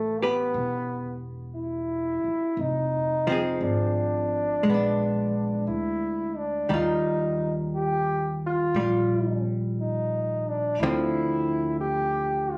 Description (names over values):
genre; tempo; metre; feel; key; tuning
jazz ballad; 58 BPM; 4/4; swing 67% on 8ths; unclear; A4 = 440 Hz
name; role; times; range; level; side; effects
bright trombone; melody; 0.0-12.6 s; A3 to G4; -29 LUFS; equal; plate reverb
archtop guitar, miked and amplified; accompaniment; 0.0-12.6 s; D3 to B4; -30 LUFS; equal; none
upright bass; bass; 0.0-12.6 s; E1 to Eb2; -34 LUFS; equal; none
room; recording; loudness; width
light reverb; recorded on a phone in the room, studio reverb, compression; -26 LUFS; mono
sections
0.0-12.6 A section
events
none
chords
0.0 Asus2; 2.6 Fm7; 4.6 Bb7b9; 6.7 Ebadd9; 10.8 Dm9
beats
0.53 1.55 | 2.58 3.61 4.64 5.67 | 6.70 7.73 8.76 9.79 | 10.82 11.85